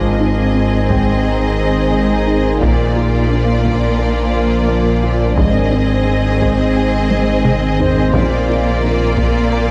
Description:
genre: cinematic, hybrid orchestral and electronic film score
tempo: 87 BPM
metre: 4/4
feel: straight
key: unclear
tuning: A4 = 440 Hz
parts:
  - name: warm symphonic violin section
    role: melody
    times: 0.0-9.7 s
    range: D5 to Eb5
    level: -26 LUFS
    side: equal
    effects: none
  - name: rich symphonic violin section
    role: second line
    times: 0.0-9.7 s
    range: F4 to Ab4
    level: -27 LUFS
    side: equal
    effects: none
  - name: warm symphonic viola section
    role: accompaniment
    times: 0.0-9.7 s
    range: Bb3 to C4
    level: -22 LUFS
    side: equal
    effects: none
  - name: deep dark ambient pad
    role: sustained chords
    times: 0.0-9.7 s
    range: Eb3 to Eb5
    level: -23 LUFS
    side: equal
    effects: chorus, built-in reverb
  - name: tight sequenced synth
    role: arpeggios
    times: 0.0-9.7 s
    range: Ab3 to Bb4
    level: -28 LUFS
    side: equal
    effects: none
  - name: rich symphonic cello section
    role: bass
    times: 0.0-9.7 s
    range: Ab2 to Bb2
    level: -22 LUFS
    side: equal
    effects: none
  - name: warm sub bass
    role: bass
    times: 0.0-9.7 s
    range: Ab1 to Bb1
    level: -22 LUFS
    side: equal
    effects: none
  - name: warm concert grand piano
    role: texture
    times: 0.0-9.7 s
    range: C4 to D6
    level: -29 LUFS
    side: equal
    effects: none
  - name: taiko ensemble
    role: drums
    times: 0.9-9.7 s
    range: none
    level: -22 LUFS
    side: equal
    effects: none
room: moderate scoring stage reverb, RT60 2.0 s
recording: none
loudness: -15 LUFS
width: mono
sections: 0.0-9.7 A section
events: drum fill 7.1-8.1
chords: 0.0 Ab; 2.6 Bb; 5.4 Ab; 8.1 Bb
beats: 0.55 1.24 1.93 | 2.62 3.31 4.00 4.69 | 5.38 6.07 6.76 7.45 | 8.14 8.83 9.52

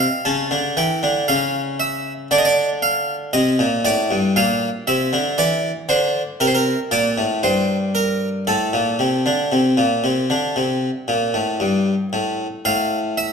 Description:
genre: classical, baroque-style two-part invention for harpsichord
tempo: 58 BPM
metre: 4/4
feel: straight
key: unclear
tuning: A4 = 437 Hz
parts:
  - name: harpsichord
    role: solo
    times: 0.0-13.3 s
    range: G2 to A5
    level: -17 LUFS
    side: equal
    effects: none
room: wet recital hall reverb, RT60 1.7 s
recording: minimal, uncompressed stereo recording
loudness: -17 LUFS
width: side -6 dB against mid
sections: 0.0-12.7 A section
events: none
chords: 0.2 A7/C#; 2.3 Dm; 4.4 Bbadd9; 6.4 Gmadd9; 12.7 F/A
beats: | 0.25 1.28 2.31 3.33 | 4.36 5.38 6.40 7.43 | 8.47 9.52 10.56 11.61 | 12.65

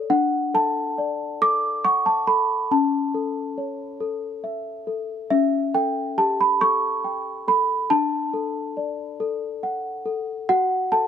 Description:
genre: classical, lullaby for celesta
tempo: 46 BPM (dotted quarters)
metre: 6/8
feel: straight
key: D major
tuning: A4 = 441 Hz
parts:
  - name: worn celesta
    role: solo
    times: 0.0-11.1 s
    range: C#4 to D6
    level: -20 LUFS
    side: equal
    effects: none
room: light reverb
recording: none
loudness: -21 LUFS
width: side -8 dB against mid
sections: 0.1-11.1 A section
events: none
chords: 0.1 D; 2.7 A/C#; 5.3 A7/C#; 7.9 D; 10.5 D/F# (rootless)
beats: | 0.09 1.40 | 2.71 4.00 | 5.30 6.60 | 7.90 9.20 | 10.48

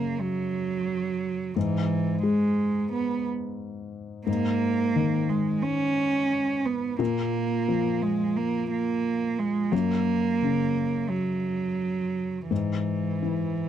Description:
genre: neoclassical piano and strings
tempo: 88 BPM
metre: 4/4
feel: rubato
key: unclear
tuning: A4 = 440 Hz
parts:
  - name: warm cello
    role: second line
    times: 0.0-13.7 s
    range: E3 to C#4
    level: -26 LUFS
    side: right 4 dB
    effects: none
  - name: felt-muted upright piano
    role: accompaniment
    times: 0.0-13.7 s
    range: F#2 to G#3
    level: -29 LUFS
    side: left 6 dB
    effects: none
room: light reverb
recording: dry, close 1970s-style studio recording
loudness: -24 LUFS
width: side -10 dB against mid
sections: 0.0-13.7 A section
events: none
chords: 0.0 F#5; 1.6 N.C.; 4.3 G#5; 7.0 A#5; 9.7 F#; 12.5 E/G#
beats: 0.20 0.88 | 1.55 2.23 2.91 3.60 | 4.27 4.95 5.64 6.32 | 7.00 7.67 8.36 9.04 | 9.72 10.41 11.10 11.80 | 12.51 13.22

